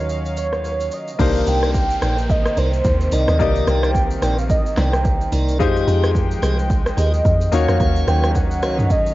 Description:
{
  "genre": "amapiano",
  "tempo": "109 BPM",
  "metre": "4/4",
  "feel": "swing 58% on 16ths",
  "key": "C minor",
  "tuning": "A4 = 439 Hz",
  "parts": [
    { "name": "warm velvety synth lead", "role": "melody", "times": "0.0-9.1 s", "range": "C5 to G5", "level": "-23 LUFS", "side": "right 2 dB", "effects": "chorus, cassette tape" },
    { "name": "clear concert grand piano", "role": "accompaniment", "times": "0.0-9.1 s", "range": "Ab3 to Eb5", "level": "-25 LUFS", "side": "left 7 dB", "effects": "cassette tape" },
    { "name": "warm studio string section", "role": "sustained chords", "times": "0.0-9.1 s", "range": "C3 to G5", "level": "-28 LUFS", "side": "right 1 dB", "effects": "cassette tape" },
    { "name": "fingered electric bass", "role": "bass", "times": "0.0-0.9 s", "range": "Eb2", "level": "-27 LUFS", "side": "equal", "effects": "transformer saturation" },
    { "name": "deep house drum kit", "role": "drums", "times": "0.1-9.1 s", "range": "crash cymbal, hi-hat, kick drum, rim click, shaker, snare drum, toms", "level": "-21 LUFS", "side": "equal", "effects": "cassette tape" },
    { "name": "tonewheel organ", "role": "stabs", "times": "1.2-8.8 s", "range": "Eb4 to F5", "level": "-26 LUFS", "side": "equal", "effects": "slow rotary speaker, cassette tape, analog delay" },
    { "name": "deep log drum bass", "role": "bass", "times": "1.2-9.0 s", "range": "Bb1 to F2", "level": "-19 LUFS", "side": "equal", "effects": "transformer saturation" },
    { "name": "downlifter", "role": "sound effects", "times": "1.2-5.6 s", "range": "none", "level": "-39 LUFS", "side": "equal", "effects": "none" }
  ],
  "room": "light reverb",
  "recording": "home recording on cassette, nothing above 7.5 kHz",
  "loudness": "-16 LUFS",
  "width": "side -17 dB against mid",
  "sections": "0.0-1.2 A section; 1.2-9.1 B section",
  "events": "drop 1.2-9.1",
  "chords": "0.0 Ebm9; 1.2 Cm9; 5.6 Fm9; 7.5 Ebm9",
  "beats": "0.10 0.65 | 1.20 1.75 2.30 2.85 | 3.40 3.95 4.50 5.05 | 5.60 6.15 6.70 7.25 | 7.80 8.35 8.90"
}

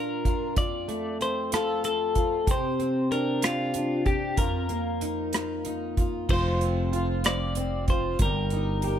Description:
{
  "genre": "six-eight pop ballad",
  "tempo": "63 BPM (dotted quarters)",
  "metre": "6/8",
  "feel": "straight",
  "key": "unclear",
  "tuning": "A4 = 440 Hz",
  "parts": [
    { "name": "twelve-string electric guitar", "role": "melody", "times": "0.0-9.0 s", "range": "F4 to D5", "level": "-29 LUFS", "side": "left 2 dB", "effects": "none" },
    { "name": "fingerpicked plugged-in steel-string acoustic guitar", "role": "accompaniment", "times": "0.0-9.0 s", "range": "F2 to G4", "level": "-29 LUFS", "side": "equal", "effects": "double-tracked left and right" },
    { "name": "unplugged drum kit", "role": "drums", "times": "0.3-9.0 s", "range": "crash cymbal, hi-hat, kick drum, rim click", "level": "-28 LUFS", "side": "right 1 dB", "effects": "none" },
    { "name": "sustaining fretless electric bass", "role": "bass", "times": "6.3-9.0 s", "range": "F1 to G1", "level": "-28 LUFS", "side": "equal", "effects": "none" }
  ],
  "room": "small room ambience",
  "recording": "none",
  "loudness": "-24 LUFS",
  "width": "side -9 dB against mid",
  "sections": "0.0-6.3 A section; 6.3-9.0 B section",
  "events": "none",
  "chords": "0.0 Bb; 0.6 F; 2.5 Csus2; 4.4 F7sus4; 6.3 F5; 8.2 Eb/G",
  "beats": "| 0.57 1.52 | 2.47 3.42 | 4.37 5.33 | 6.28 7.24 | 8.19"
}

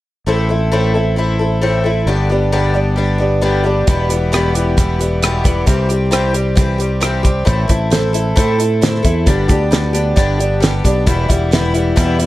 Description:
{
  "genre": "folk rock and heartland rock",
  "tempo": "133 BPM",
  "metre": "4/4",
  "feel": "straight",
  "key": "unclear",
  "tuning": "A4 = 441 Hz",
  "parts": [
    { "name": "picked twelve-string acoustic guitar", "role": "accompaniment", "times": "0.3-12.3 s", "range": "E2 to A4", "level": "-16 LUFS", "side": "left 1 dB", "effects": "none" },
    { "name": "fingered electric bass", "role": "bass", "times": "0.3-12.3 s", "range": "E1 to A2", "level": "-17 LUFS", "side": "equal", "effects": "none" },
    { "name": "damped 70s drum kit", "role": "drums", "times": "3.9-12.3 s", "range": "hi-hat, kick drum, rim click, snare drum", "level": "-15 LUFS", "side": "equal", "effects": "none" }
  ],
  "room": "light reverb, small room ambience",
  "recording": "dark, warm production",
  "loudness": "-12 LUFS",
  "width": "side -16 dB against mid",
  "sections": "0.3-7.5 A section; 7.5-12.3 B section",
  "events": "none",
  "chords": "0.3 Am; 2.1 G; 3.9 Em; 5.7 C; 7.5 Am; 9.3 G; 11.1 Em",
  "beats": "| 0.27 0.72 1.17 1.62 | 2.07 2.52 2.97 3.42 | 3.87 4.32 4.77 5.22 | 5.67 6.12 6.57 7.02 | 7.47 7.92 8.37 8.82 | 9.27 9.72 10.17 10.62 | 11.07 11.52 11.97"
}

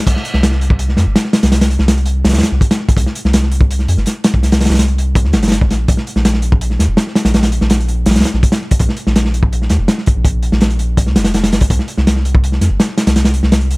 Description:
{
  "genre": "drum and bass, jungle",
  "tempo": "165 BPM",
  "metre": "4/4",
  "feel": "straight",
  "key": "C phrygian",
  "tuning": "A4 = 440 Hz",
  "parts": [
    { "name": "soft dub sub bass", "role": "bass", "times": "0.1-13.8 s", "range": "F1 to F2", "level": "-14 LUFS", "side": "equal", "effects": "none" },
    { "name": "crunchy breakbeat drum kit", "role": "drums", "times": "0.1-13.8 s", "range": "crash cymbal, hi-hat, kick drum, snare drum", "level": "-13 LUFS", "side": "equal", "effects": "none" }
  ],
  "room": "little or no reverb",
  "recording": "none",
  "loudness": "-11 LUFS",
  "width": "side -25 dB against mid",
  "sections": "0.1-13.8 A section",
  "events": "drop 0.1-13.8",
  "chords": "none",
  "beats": "| 0.07 0.43 0.79 1.16 | 1.52 1.88 2.25 2.61 | 2.98 3.34 3.70 4.07 | 4.43 4.79 5.16 5.52 | 5.88 6.25 6.61 6.97 | 7.34 7.70 8.07 8.43 | 8.79 9.16 9.52 9.88 | 10.25 10.61 10.97 11.34 | 11.70 12.07 12.43 12.79 | 13.16 13.52"
}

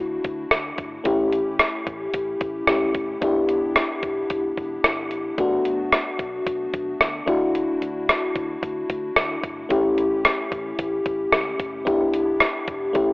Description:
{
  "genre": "1980s-style pop",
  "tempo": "111 BPM",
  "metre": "4/4",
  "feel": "straight",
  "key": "unclear",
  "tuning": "A4 = 441 Hz",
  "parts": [
    { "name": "FM electric piano with soft pad layer", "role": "accompaniment", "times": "0.0-13.1 s", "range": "A3 to G4", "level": "-22 LUFS", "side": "left 1 dB", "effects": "chorus, tremolo, cassette tape" },
    { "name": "vintage muted fingered electric bass", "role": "bass", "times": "0.0-13.1 s", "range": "E1 to D2", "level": "-42 LUFS", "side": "equal", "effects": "none" },
    { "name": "clean 12-bit digital drum machine", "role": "drums", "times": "0.2-13.1 s", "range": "hi-hat, kick drum, rim click", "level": "-21 LUFS", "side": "equal", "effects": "cassette tape" }
  ],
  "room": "moderate spring reverb, RT60 1.9 s",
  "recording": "home recording on cassette, telephone sound",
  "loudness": "-20 LUFS",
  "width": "side -24 dB against mid",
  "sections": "0.0-13.1 A section",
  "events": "none",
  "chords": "0.0 Dadd9; 1.1 A7; 3.2 Em7; 5.4 Bm7; 7.3 Dadd9; 9.7 A7; 11.9 Em7",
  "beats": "0.52 | 1.06 1.60 2.14 2.68 | 3.22 3.76 4.30 4.84 | 5.38 5.92 6.46 7.00 | 7.54 8.09 8.63 9.17 | 9.71 10.25 10.79 11.33 | 11.87 12.41 12.95"
}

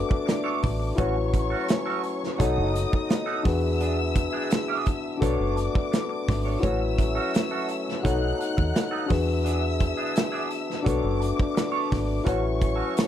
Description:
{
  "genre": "lush 1970s-style soul",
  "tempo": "85 BPM",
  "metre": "4/4",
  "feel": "straight",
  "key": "A major",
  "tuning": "A4 = 440 Hz",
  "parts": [
    { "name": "dark studio string section", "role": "second line", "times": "0.0-13.1 s", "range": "D4 to F#6", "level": "-33 LUFS", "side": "left 2 dB", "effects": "none" },
    { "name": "tine electric piano", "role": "accompaniment", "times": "0.0-13.1 s", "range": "D4 to C#5", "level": "-28 LUFS", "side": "left 6 dB", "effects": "none" },
    { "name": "warm French horn section", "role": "sustained chords", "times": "0.0-13.1 s", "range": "E3 to G#4", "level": "-36 LUFS", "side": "right 1 dB", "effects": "none" },
    { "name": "clean electric guitar", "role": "riff", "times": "0.1-13.0 s", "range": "B3 to C#5", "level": "-32 LUFS", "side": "right 8 dB", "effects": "wah" },
    { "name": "modern studio drum kit", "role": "drums", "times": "0.1-13.1 s", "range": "hi-hat, kick drum, snare drum", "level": "-25 LUFS", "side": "right 1 dB", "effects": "none" },
    { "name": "deep dub fingered electric bass", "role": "bass", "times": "0.6-12.8 s", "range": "F#1 to E2", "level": "-27 LUFS", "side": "right 1 dB", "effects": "none" }
  ],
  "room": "small room reverb",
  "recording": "none",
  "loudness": "-23 LUFS",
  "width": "side -10 dB against mid",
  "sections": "0.0-13.1 A section",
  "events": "none",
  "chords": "0.0 Bm9; 1.0 A6; 2.4 B7; 3.5 E7; 5.2 Bm9; 6.6 A6; 8.0 B7; 9.1 E7; 10.9 Bm9; 12.3 A6",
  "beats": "0.28 | 0.98 1.69 2.40 3.10 | 3.81 4.51 5.22 5.93 | 6.63 7.34 8.04 8.75 | 9.45 10.15 10.86 11.56 | 12.27 12.97"
}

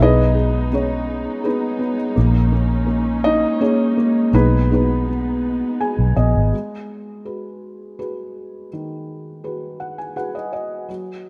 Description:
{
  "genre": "acoustic folk-pop ballad",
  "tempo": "83 BPM",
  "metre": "3/4",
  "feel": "straight",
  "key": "G# minor",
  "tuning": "A4 = 440 Hz",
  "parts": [
    { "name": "felt-muted upright piano", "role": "melody", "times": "0.0-11.3 s", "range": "D#3 to G#5", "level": "-22 LUFS", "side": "equal", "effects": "none" },
    { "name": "muted chamber string section", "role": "sustained chords", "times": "0.0-6.5 s", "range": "G#3 to D#4", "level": "-32 LUFS", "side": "equal", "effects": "none" },
    { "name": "vintage muted fingered electric bass", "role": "bass", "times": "0.0-6.5 s", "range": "G#1 to B1", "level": "-20 LUFS", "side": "equal", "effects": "none" }
  ],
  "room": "light reverb, small room ambience",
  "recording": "rough home demo mix",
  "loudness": "-19 LUFS",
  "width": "mono",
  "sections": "0.0-6.5 A section; 6.5-11.3 B section",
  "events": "felt piano fill 5.4-6.5, 9.4-10.9",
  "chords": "0.0 G#m/B; 2.2 D#7sus4/A#; 4.3 G#m/B; 6.5 G#m7",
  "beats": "0.70 1.43 | 2.15 2.88 3.61 | 4.33 5.06 5.80 | 6.53 7.26 7.99 | 8.71 9.44 10.16 | 10.89"
}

